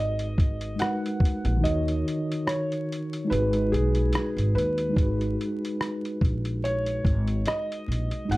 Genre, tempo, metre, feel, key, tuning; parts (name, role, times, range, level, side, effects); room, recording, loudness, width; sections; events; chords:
lo-fi hip hop; 72 BPM; 4/4; swing 55% on 16ths; G# minor; A4 = 440 Hz
felt-muted upright piano; melody; 0.0-8.4 s; G#4 to F#5; -30 LUFS; equal; low-pass filter
mellow tine electric piano; accompaniment; 0.0-8.4 s; D#3 to C#5; -30 LUFS; equal; medium stereo tremolo, cassette tape, low-pass filter
upright bass; bass; 0.0-8.4 s; G#1 to D#2; -26 LUFS; equal
dusty soul sampler-style drum kit; drums; 0.2-8.4 s; hi-hat, kick drum, rim click; -26 LUFS; equal
light reverb; dark, warm production, vinyl crackle; -24 LUFS; side -19 dB against mid
0.0-5.0 A section; 5.0-8.4 B section
kick muted 1.6-5.0
0.0 G#m7; 1.6 D#m7; 3.3 G#m7